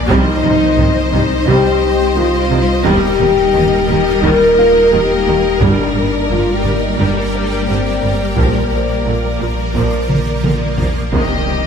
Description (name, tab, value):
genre	cinematic, hybrid orchestral and electronic film score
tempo	87 BPM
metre	4/4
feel	straight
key	C minor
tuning	A4 = 440 Hz
part	warm symphonic violin section	melody	0.0-11.7 s	D5 to Eb5	-25 LUFS	left 5 dB	none
part	clear symphonic violin section	second line	0.0-11.7 s	G4 to C5	-22 LUFS	left 2 dB	none
part	shimmering ambient pad	sustained chords	0.0-11.7 s	Eb3 to G5	-20 LUFS	right 1 dB	chorus, built-in reverb
part	sub bass with octave	bass	0.0-11.7 s	Eb1 to C2	-22 LUFS	equal	none
part	felt-muted upright piano	texture	0.0-11.2 s	F4 to Ab5	-30 LUFS	equal	none
part	warm symphonic viola section	accompaniment	0.1-11.6 s	C3 to G3	-23 LUFS	right 1 dB	none
part	mellow French horn section	sustained chords	0.1-11.7 s	Bb3 to Bb4	-15 LUFS	left 2 dB	none
part	rich symphonic cello section	bass	0.1-11.5 s	G2 to Eb3	-22 LUFS	right 4 dB	none
part	rich symphonic double bass section	bass	0.1-11.6 s	G1 to Eb2	-23 LUFS	right 4 dB	none
part	taiko ensemble	drums	0.1-11.7 s	none	-21 LUFS	equal	none
part	impact	sound effects	11.1-11.7 s	none	-23 LUFS	equal	none
room	wet scoring stage reverb, RT60 1.6 s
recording	none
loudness	-11 LUFS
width	side -7 dB against mid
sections	0.0-11.1 A section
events	drum fill 10.1-11.1; impact 11.1-11.7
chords	0.1 Cm; 2.9 Eb; 5.6 Gm; 8.4 Bb; 11.1 Cm